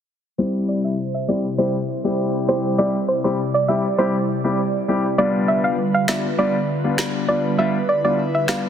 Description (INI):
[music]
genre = dancehall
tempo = 100 BPM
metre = 4/4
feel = straight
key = C major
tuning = A4 = 440 Hz
[part]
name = soft round pluck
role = melody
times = 0.4-8.6 s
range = C5 to F5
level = -22 LUFS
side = right 2 dB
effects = chorus, low-pass filter
[part]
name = dark concert grand piano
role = accompaniment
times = 0.4-8.6 s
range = G3 to G4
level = -22 LUFS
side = left 2 dB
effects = low-pass filter
[part]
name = airy breathy pad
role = sustained chords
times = 0.4-8.7 s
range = C3 to D5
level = -24 LUFS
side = right 1 dB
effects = chorus, phaser, low-pass filter
[part]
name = electronic finger snaps and snare drum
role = drums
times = 6.1-8.6 s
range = none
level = -26 LUFS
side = equal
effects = none
[sound]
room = light reverb, digital ambience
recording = dense, heavily limited modern master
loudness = -18 LUFS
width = side -8 dB against mid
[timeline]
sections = 0.4-8.7 A section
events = filter sweep 0.4-8.7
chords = 0.4 C; 5.2 G7